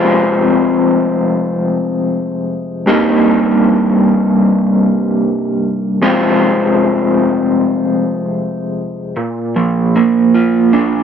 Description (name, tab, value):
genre	rock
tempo	76 BPM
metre	4/4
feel	straight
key	unclear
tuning	A4 = 438 Hz
part	electric guitar through a small old amp	solo	0.0-11.0 s	C2 to F4	-11 LUFS	equal	tremolo
room	moderate spring reverb, RT60 1.1 s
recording	none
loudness	-11 LUFS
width	side -8 dB against mid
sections	0.0-9.2 A section; 9.2-11.0 B section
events	none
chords	0.0 Fm; 2.9 Cm7; 6.0 Fm; 9.2 Bb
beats	0.52 1.30 2.09 | 2.88 3.66 4.45 5.23 | 6.02 6.80 7.59 8.37 | 9.16 9.94 10.73